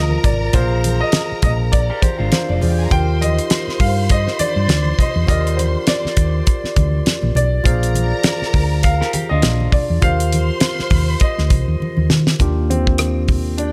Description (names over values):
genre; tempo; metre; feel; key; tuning
lush 1970s-style soul; 101 BPM; 4/4; swing 58% on 16ths; Eb major; A4 = 440 Hz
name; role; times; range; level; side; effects
warm grand piano; melody; 0.0-13.7 s; C4 to G5; -26 LUFS; equal; none
warm studio string section; second line; 0.0-13.7 s; D4 to C6; -30 LUFS; equal; none
barky tine electric piano; accompaniment; 0.0-13.7 s; Bb3 to F5; -28 LUFS; equal; none
hollow-body short-scale fingered electric bass; bass; 0.0-13.7 s; F1 to Eb3; -20 LUFS; equal; none
vibraphone with soft mallets; texture; 0.0-13.7 s; Bb3 to F5; -36 LUFS; equal; none
congas; percussion; 0.1-13.4 s; none; -30 LUFS; equal; none
damped 70s drum kit; drums; 0.2-13.7 s; hi-hat, kick drum, rim click, snare drum; -20 LUFS; equal; none
electric guitar through a small old amp; riff; 1.9-3.0, 9.0-10.2 s; D4 to Bb4; -30 LUFS; equal; none
room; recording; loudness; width
studio reverb; none; -17 LUFS; mono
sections
0.0-12.4 A section; 12.4-13.7 B section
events
drum fill 11.8-12.4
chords
0.0 Bb9; 2.9 Ebmaj7; 7.7 Bb9; 10.0 Eb69; 12.4 Ebmaj7